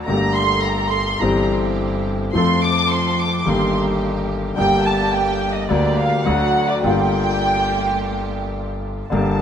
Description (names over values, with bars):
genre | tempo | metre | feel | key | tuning
tango | 106 BPM | 4/4 | rubato | G minor | A4 = 440 Hz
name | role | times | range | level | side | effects
warm concert grand piano | accompaniment | 0.0-9.4 s | G1 to A4 | -19 LUFS | left 2 dB | none
clear chamber string section | stabs | 0.0-9.0 s | A3 to A4 | -30 LUFS | right 10 dB | none
upright bass | bass | 0.0-9.4 s | G1 to F2 | -29 LUFS | right 1 dB | none
dark studio violin section | second line | 0.1-9.4 s | D5 to D6 | -21 LUFS | right 2 dB | none
room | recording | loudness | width
moderate lush hall reverb, RT60 2.7 s | rough home demo mix | -16 LUFS | side -8 dB against mid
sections
0.0-9.1 A section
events
violin section solo 0.0-9.1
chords
0.1 Gmadd9; 1.2 C/G; 2.3 F; 3.5 Eb/G; 4.6 Gm; 5.7 Gm/D; 6.3 D; 6.8 Gm7